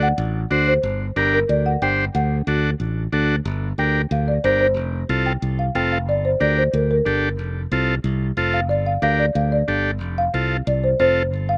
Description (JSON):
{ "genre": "latin, cumbia", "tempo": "183 BPM", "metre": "4/4", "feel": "straight", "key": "G minor from 3.5 s", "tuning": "A4 = 440 Hz", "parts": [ { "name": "folk marimba with soft mallets", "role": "melody", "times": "0.0-11.6 s", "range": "Bb4 to G5", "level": "-24 LUFS", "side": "equal", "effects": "slapback echo" }, { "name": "combo organ", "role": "accompaniment", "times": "0.0-11.2 s", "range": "C4 to C5", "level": "-25 LUFS", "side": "equal", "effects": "slapback echo" }, { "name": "modern bright fingered electric bass", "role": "bass", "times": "0.0-11.6 s", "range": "F1 to D2", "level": "-24 LUFS", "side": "equal", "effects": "none" } ], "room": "little or no reverb", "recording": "recorded outdoors, with no room sound", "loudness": "-20 LUFS", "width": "mono", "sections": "0.0-3.5 A section; 3.5-11.6 B section", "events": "marimba solo 3.5-11.6", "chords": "0.0 D7; 0.8 Gm; 2.1 D; 3.5 Gm; 4.8 F; 6.1 Gm; 7.4 F; 8.7 Gm; 10.0 F", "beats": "0.18 0.51 | 0.84 1.16 1.49 1.82 | 2.15 2.48 2.80 3.13 | 3.46 3.79 4.11 4.44 | 4.77 5.10 5.43 5.75 | 6.08 6.41 6.74 7.07 | 7.39 7.72 8.05 8.38 | 8.70 9.03 9.36 9.69 | 10.01 10.34 10.67 11.00 | 11.32" }